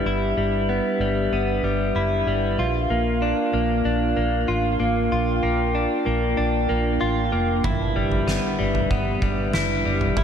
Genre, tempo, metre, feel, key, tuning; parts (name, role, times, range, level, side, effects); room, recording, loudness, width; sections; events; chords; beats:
dream pop; 95 BPM; 4/4; straight; A4 = 440 Hz
glass harmonica; sustained chords; 0.0-10.2 s; D4 to G5; -26 LUFS; right 1 dB; stereo widening
direct-recorded clean electric guitar; arpeggios; 0.0-10.2 s; G3 to F4; -23 LUFS; left 2 dB; analog chorus, tape echo
vintage muted fingered electric bass; bass; 0.0-10.2 s; F1 to Bb1; -26 LUFS; right 1 dB
oversized low-tuned drum kit; drums; 7.6-10.2 s; kick drum, snare drum, toms; -25 LUFS; right 1 dB
worn celesta; texture; 7.7-8.8 s; E5 to A5; -39 LUFS; right 4 dB
moderate scoring stage reverb, RT60 1.9 s, small room ambience; -20 LUFS; side -8 dB against mid
0.0-10.2 A section
0.0 G6; 2.6 Bb; 7.6 G6
| 0.06 0.69 1.32 1.96 | 2.59 3.22 3.85 4.48 | 5.11 5.75 6.38 7.01 | 7.64 8.27 8.90 9.53 | 10.17